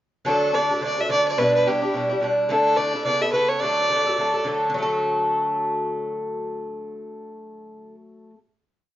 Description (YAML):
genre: celtic folk, Celtic reel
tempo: 214 BPM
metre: 4/4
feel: swing 58% on 8ths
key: D major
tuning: A4 = 438 Hz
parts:
  - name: rich fiddle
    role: melody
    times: 0.3-4.4 s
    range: G4 to E5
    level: -22 LUFS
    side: equal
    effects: none
  - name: Irish bouzouki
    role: accompaniment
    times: 0.3-8.4 s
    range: B2 to A4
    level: -23 LUFS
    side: equal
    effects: none
room: moderate studio reverb, RT60 0.5 s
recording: worn, warbling old tape, cassette tape, warbly pitch drift, nothing above 7.5 kHz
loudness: -20 LUFS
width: side -13 dB against mid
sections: 0.3-4.7 A section; 4.7-7.0 final chord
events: none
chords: 0.3 D; 1.4 Em7; 2.5 Asus4; 3.1 Aadd9; 3.6 D